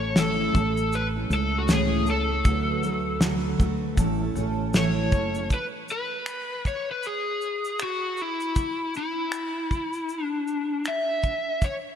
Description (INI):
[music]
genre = acoustic pop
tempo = 79 BPM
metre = 4/4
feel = swing 60% on 16ths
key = A major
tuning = A4 = 439 Hz
[part]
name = overdriven slide guitar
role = melody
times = 0.0-11.7 s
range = E4 to E5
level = -27 LUFS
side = left 2 dB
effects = lush chorus
[part]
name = picked steel-string acoustic guitar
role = accompaniment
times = 0.0-5.5 s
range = A2 to B4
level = -27 LUFS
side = right 1 dB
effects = double-tracked left and right
[part]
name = upright bass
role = bass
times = 0.0-5.5 s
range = F#1 to D2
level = -28 LUFS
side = right 1 dB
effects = none
[part]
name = cloth-damped thuddy drum kit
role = drums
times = 0.2-11.8 s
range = finger snaps, kick drum, shaker, snare drum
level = -26 LUFS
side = equal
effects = gated reverb
[sound]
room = moderate lush hall reverb, RT60 3.2 s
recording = bright 1980s-style digital production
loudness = -23 LUFS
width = side -8 dB against mid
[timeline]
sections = 0.0-5.5 A section; 5.5-12.0 B section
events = none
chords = 0.0 A; 2.5 D6; 4.0 A; 5.5 N.C.